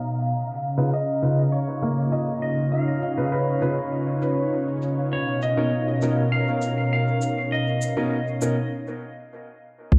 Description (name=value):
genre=ambient dub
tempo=100 BPM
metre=4/4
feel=straight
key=unclear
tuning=A4 = 440 Hz
part: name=warm analog pad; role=sustained chords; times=0.0-10.0 s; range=Cb3 to Bb5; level=-26 LUFS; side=equal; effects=chorus
part: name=shaker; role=drums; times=0.0-8.5 s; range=none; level=-41 LUFS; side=equal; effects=none
part: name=bubbling stepped-filter texture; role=texture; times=0.0-8.7 s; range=F5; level=-39 LUFS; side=equal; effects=chorus, built-in reverb
part: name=clear upright piano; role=stabs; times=0.8-8.5 s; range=Cb3 to Cb5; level=-30 LUFS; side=equal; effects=dub echo
part: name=clean lap steel guitar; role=melody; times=0.9-8.7 s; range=Db5 to F5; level=-32 LUFS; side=equal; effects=dub echo
part: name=felt-muted upright piano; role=arpeggios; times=1.8-5.1 s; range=Bb3 to Eb5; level=-34 LUFS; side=equal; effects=low-pass filter, tape echo
part: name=soft dub sub bass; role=bass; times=9.9-10.0 s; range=Db2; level=-14 LUFS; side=equal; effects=none
part: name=electronic kick drum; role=drums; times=9.9-10.0 s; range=none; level=-21 LUFS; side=equal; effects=none
room=moderate echo chamber reverb, RT60 1.7 s, digital ambience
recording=dark, warm production, low-pass filter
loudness=-24 LUFS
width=mono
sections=0.0-9.9 A section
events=filter sweep on analog synth pad 0.0-9.9; filter sweep on upright piano 0.0-9.9; filter sweep on felt piano 0.0-9.9; filter sweep 0.0-9.9; break 8.7-9.9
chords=0.3 Db7; 5.1 Cbmaj7